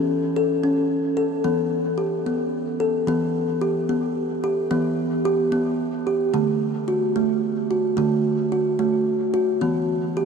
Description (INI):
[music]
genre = world meditative, meditative tuned percussion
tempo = 74 BPM (dotted quarters)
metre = 6/8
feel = straight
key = E dorian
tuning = A4 = 440 Hz
[part]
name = kalimba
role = solo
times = 0.0-10.3 s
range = D3 to A4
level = -20 LUFS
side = equal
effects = diffuse ambient delay
[sound]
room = wet huge ambient reverb, RT60 7.8 s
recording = in a vast, echoing space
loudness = -20 LUFS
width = side -6 dB against mid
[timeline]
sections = 0.0-3.1 A section; 3.1-10.3 B section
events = none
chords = 0.0 A/E; 1.4 Em; 6.3 D; 9.6 Em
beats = 0.63 | 1.45 2.27 | 3.08 3.90 | 4.72 5.53 | 6.35 7.16 | 7.98 8.79 | 9.61